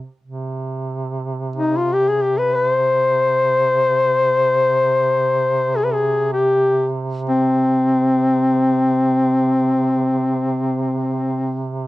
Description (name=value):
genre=caucasian folk, Caucasian lament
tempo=free time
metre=none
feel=none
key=unclear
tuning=A4 = 440 Hz
part: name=warm duduk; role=drone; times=0.0-11.9 s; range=C3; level=-25 LUFS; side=right 3 dB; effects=stereo widening, cassette tape
part: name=mellow duduk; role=melody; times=1.6-11.7 s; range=C4 to C5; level=-16 LUFS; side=left 2 dB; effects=cassette tape
room=moderate studio reverb, RT60 0.5 s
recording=home recording on cassette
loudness=-16 LUFS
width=side -17 dB against mid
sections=0.2-11.9 A section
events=none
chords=none